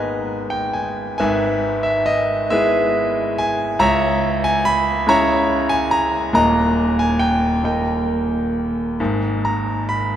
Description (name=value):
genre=classical, lyrical solo piano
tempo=46 BPM (dotted quarters)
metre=6/8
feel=uneven beats, rubato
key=G# harmonic minor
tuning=A4 = 438 Hz
part: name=bright concert grand piano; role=solo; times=0.0-10.2 s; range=D#1 to B5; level=-16 LUFS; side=equal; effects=none
room=wet cathedral reverb, RT60 5.4 s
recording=in a vast, echoing space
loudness=-16 LUFS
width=side -10 dB against mid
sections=0.0-10.2 A section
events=none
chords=0.0 G#m; 1.2 E/G#; 3.8 C#m; 6.3 N.C.; 7.6 D#; 9.0 G#m